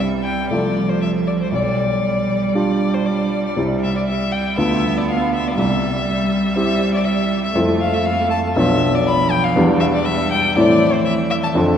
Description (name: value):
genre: quick classical-period movement for piano trio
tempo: 120 BPM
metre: 4/4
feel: rubato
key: C major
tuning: A4 = 441 Hz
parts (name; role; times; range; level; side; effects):
- rich violin; melody; 0.0-11.5 s; C5 to B5; -21 LUFS; left 4 dB; none
- rich cello; second line; 0.0-11.8 s; D3 to B3; -21 LUFS; right 4 dB; none
- clear baby grand piano; accompaniment; 0.0-11.8 s; B1 to A4; -19 LUFS; left 1 dB; none
room: wet church reverb, RT60 3.5 s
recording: none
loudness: -15 LUFS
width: side -8 dB against mid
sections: 0.0-11.8 A section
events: none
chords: 0.0 C; 0.5 Dm7/C; 1.5 G7/B; 3.6 C; 4.6 Bdim/D; 5.6 C; 7.5 Fmaj7; 8.6 Bdim; 9.6 Em7; 10.6 Am